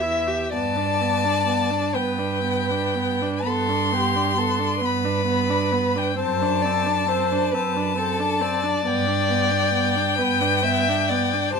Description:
classical, slow romantic movement for string quartet; 36-46 BPM (dotted quarters); 12/8; rubato; A4 = 440 Hz
rich violin; melody; 0.0-11.6 s; E5 to C6; -24 LUFS; left 7 dB
rich violin; second line; 0.0-11.6 s; G4 to E5; -25 LUFS; left 2 dB
rich viola; accompaniment; 0.0-11.6 s; B3 to G4; -27 LUFS; right 4 dB
rich cello; bass; 0.0-11.6 s; E2 to C3; -27 LUFS; right 7 dB
moderate studio reverb, RT60 0.5 s; minimal, uncompressed stereo recording; -20 LUFS; side -5 dB against mid
0.0-11.6 A section
0.0 Em; 0.5 G; 6.2 D7/F#; 8.9 G

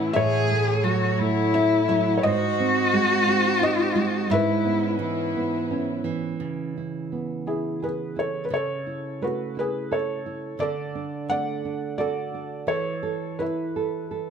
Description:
acoustic folk-pop ballad; 86 BPM; 3/4; straight; F# minor; A4 = 439 Hz
felt-muted upright piano; melody; 0.0-14.3 s; E4 to F#5; -28 LUFS; left 2 dB
warm cello; second line; 0.0-6.0 s; E4 to G#4; -23 LUFS; left 3 dB
nylon-string guitar; accompaniment; 0.0-14.3 s; G#2 to A4; -27 LUFS; right 5 dB
warm chamber string section; sustained chords; 0.0-6.4 s; G#3 to C#5; -32 LUFS; left 2 dB
moderate recital hall reverb, RT60 1.6 s; close, detailed microphones; -22 LUFS; side -7 dB against mid
0.0-6.4 A section; 6.4-14.3 B section
0.1 F#m7/A; 2.2 G#7; 4.3 C#m7/G#; 6.4 C#m7; 8.5 F#m7/C# (rootless); 10.6 D; 12.7 Esus4

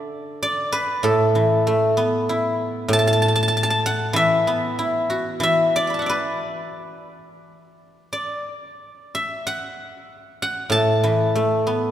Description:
chinese traditional, Chinese solo plucked strings; 86-99 BPM; 4/4; rubato; D gong mode; A4 = 439 Hz
guzheng; solo; 0.0-11.9 s; A2 to D6; -19 LUFS; equal
wet church reverb, RT60 3.4 s; recorded in a church or concert hall; -18 LUFS; side -11 dB against mid
0.0-11.9 A section

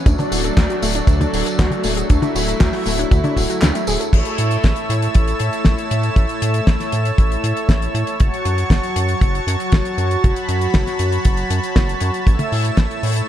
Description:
italo disco; 118 BPM; 4/4; straight; A major; A4 = 440 Hz
lush unison pad; sustained chords; 0.0-13.3 s; F#3 to E6; -21 LUFS; equal; chorus, vintage 12-bit sampler grit
wide unison pluck; arpeggios; 0.1-4.1 s; D3 to A4; -24 LUFS; left 2 dB; ping-pong delay
round analog bass; bass; 0.1-13.2 s; D1 to A2; -21 LUFS; equal
damped 70s drum kit; drums; 0.1-13.3 s; crash cymbal, handclaps, hi-hat, snare drum, tambourine, toms; -22 LUFS; left 1 dB
kick drum; drums; 0.1-12.9 s; -15 LUFS; equal
light reverb, studio reverb; dark, warm production; -15 LUFS; side -11 dB against mid
0.0-4.1 A section; 4.1-13.3 B section
kick drops out 3.6-4.1
0.1 D; 4.1 A; 8.2 F#m; 12.3 A

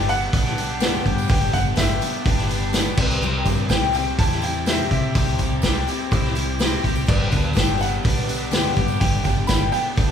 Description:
folk rock and heartland rock; 124 BPM; 4/4; straight; G major; A4 = 441 Hz
clear baby grand piano; melody; 0.0-10.1 s; D5 to B5; -28 LUFS; right 2 dB
picked twelve-string acoustic guitar; accompaniment; 0.0-10.1 s; G2 to G4; -26 LUFS; left 5 dB
musette accordion; sustained chords; 0.0-10.1 s; B3 to C5; -38 LUFS; right 1 dB
raw garage guitar; riff; 0.0-10.1 s; G2 to G4; -30 LUFS; right 2 dB; overdrive
fingered electric bass; bass; 0.0-10.1 s; G1 to C3; -26 LUFS; equal
vintage drum kit; drums; 0.1-10.1 s; crash cymbal, hi-hat, kick drum, snare drum; -21 LUFS; right 1 dB
tambourine; percussion; 0.1-10.1 s; -39 LUFS; right 5 dB
moderate large studio reverb, RT60 0.8 s; band playing live in one room; -18 LUFS; side -8 dB against mid
0.0-10.1 A section
0.0 G; 3.0 C; 7.1 G

